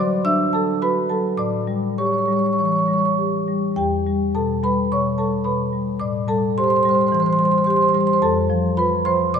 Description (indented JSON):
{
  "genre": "classical, contemporary piece for solo marimba",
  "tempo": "99-111 BPM",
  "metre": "4/4",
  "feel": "rubato",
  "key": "unclear",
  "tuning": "A4 = 443 Hz",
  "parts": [
    { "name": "marimba with medium mallets", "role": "solo", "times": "0.0-9.4 s", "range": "E2 to E6", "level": "-17 LUFS", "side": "equal", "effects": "none" }
  ],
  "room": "wet church reverb, RT60 2.8 s",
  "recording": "dark, warm production, nothing above 10.9 kHz",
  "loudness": "-17 LUFS",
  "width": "side -7 dB against mid",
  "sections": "0.0-9.4 A section",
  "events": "none",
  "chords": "0.0 Dadd9; 1.4 A7; 3.8 Em6; 6.0 Am7; 8.2 F"
}